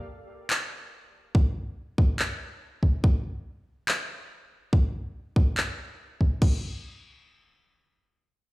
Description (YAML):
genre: future bass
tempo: 142 BPM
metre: 4/4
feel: swing 55% on 16ths, half-time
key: none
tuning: none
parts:
  - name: dubstep drum kit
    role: drums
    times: 0.5-6.5 s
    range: crash cymbal, handclaps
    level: -29 LUFS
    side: equal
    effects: none
  - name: electronic kick drum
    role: drums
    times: 1.3-6.5 s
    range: none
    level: -20 LUFS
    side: equal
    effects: none
room: little or no reverb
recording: played on a big sound system in a bare room, large studio reverb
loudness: -24 LUFS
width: side -21 dB against mid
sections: 0.0-6.4 A section; 6.4-8.5 B section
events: none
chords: none